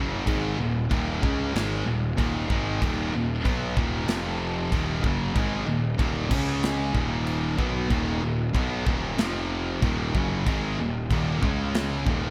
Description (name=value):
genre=heavy metal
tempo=94 BPM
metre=4/4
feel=straight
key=Eb minor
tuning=A4 = 440 Hz
part: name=heavy high-gain guitar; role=riff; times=0.0-12.3 s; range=Eb2 to Db4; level=-33 LUFS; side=equal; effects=distortion
part: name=sludgy distorted guitar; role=riff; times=0.0-12.3 s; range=Eb2 to Db4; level=-33 LUFS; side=equal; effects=overdrive
part: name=thick fuzz guitar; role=riff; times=0.0-12.3 s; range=Eb2 to Db4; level=-35 LUFS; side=equal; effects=none
part: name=fuzz picked electric bass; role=bass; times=0.0-12.3 s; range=Eb1 to Db2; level=-34 LUFS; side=equal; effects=overdrive
part: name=modern studio drum kit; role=drums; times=0.3-12.2 s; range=crash cymbal, kick drum, snare drum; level=-31 LUFS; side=equal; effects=none
room=light reverb, small room ambience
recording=none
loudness=-26 LUFS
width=mono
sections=0.0-12.3 A section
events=none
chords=0.0 Ebm; 4.1 F5; 4.7 Ebm; 6.3 Db5; 7.0 Ebm; 9.2 F5; 9.8 Ebm; 11.4 Db5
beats=| 0.27 0.90 1.54 2.17 | 2.81 3.45 4.08 4.72 | 5.36 5.99 6.63 7.27 | 7.91 8.55 9.19 9.83 | 10.47 11.11 11.75